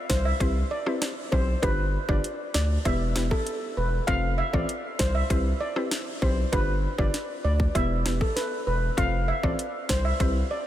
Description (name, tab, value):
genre	dancehall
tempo	98 BPM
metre	4/4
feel	straight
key	unclear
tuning	A4 = 441 Hz
part	steel pan	melody	0.1-10.6 s	A4 to F5	-29 LUFS	right 1 dB	analog delay
part	saturated sub bass	bass	0.1-10.4 s	E1 to D2	-26 LUFS	equal	none
part	island pop drum kit	drums	0.1-10.3 s	hi-hat, kick drum, rim click, snare drum	-29 LUFS	equal	overdrive
part	mallet-like synth pluck	accompaniment	0.4-10.4 s	B3 to C5	-32 LUFS	left 2 dB	chorus
room	light reverb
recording	none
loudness	-23 LUFS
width	side -12 dB against mid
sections	0.0-10.7 A section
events	none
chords	0.4 Cmaj7; 1.6 G7; 2.9 Em; 4.1 F; 5.3 Cmaj7; 6.5 G7; 7.8 Em; 9.0 F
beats	0.40 1.02 | 1.63 2.24 2.85 3.47 | 4.08 4.69 5.30 5.91 | 6.53 7.14 7.75 8.36 | 8.98 9.59 10.20